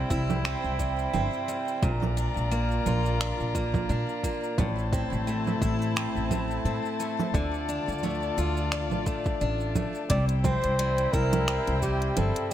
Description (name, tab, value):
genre	folktronica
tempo	87 BPM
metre	4/4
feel	swing 56% on 16ths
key	C mixolydian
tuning	A4 = 440 Hz
part	warm string quartet	sustained chords	0.0-12.5 s	E4 to Bb5	-34 LUFS	left 3 dB	none
part	picked steel-string acoustic guitar	arpeggios	0.0-12.5 s	A2 to F4	-30 LUFS	equal	digital delay
part	upright bass	bass	0.1-12.3 s	G1 to Bb2	-29 LUFS	equal	none
part	electronic kick drum	drums	0.1-12.0 s	none	-29 LUFS	equal	overdrive
part	organic electronic drum kit	drums	0.1-12.5 s	congas, finger snaps, hi-hat, shaker	-33 LUFS	right 4 dB	overdrive
part	mellow flugelhorn	melody	10.1-12.5 s	G4 to D5	-28 LUFS	equal	digital delay
room	light reverb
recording	none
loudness	-25 LUFS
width	side -11 dB against mid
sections	0.0-12.5 A section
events	none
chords	0.0 C; 1.8 Bb; 4.6 Am; 7.3 Dm; 10.1 C